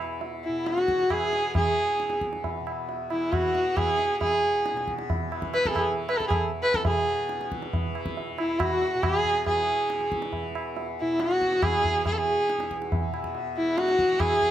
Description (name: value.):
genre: indian classical, Hindustani.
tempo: 137 BPM.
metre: 3/4.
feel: straight.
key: unclear.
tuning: A4 = 439 Hz.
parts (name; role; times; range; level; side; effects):
tanpura; drone; 0.0-14.5 s; E2 to E3; -36 LUFS; left 2 dB; none.
tabla; percussion; 0.2-14.5 s; none; -30 LUFS; right 1 dB; none.
warm sarangi; melody; 0.4-14.5 s; E4 to B4; -24 LUFS; equal; none.
pedal harmonium; second line; 0.6-14.5 s; E4 to B4; -34 LUFS; left 2 dB; none.
room: little or no reverb.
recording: close, detailed microphones.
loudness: -24 LUFS.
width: side -11 dB against mid.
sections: 0.0-6.8 A section; 6.8-14.5 B section.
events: speeding up 0.0-14.5.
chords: none.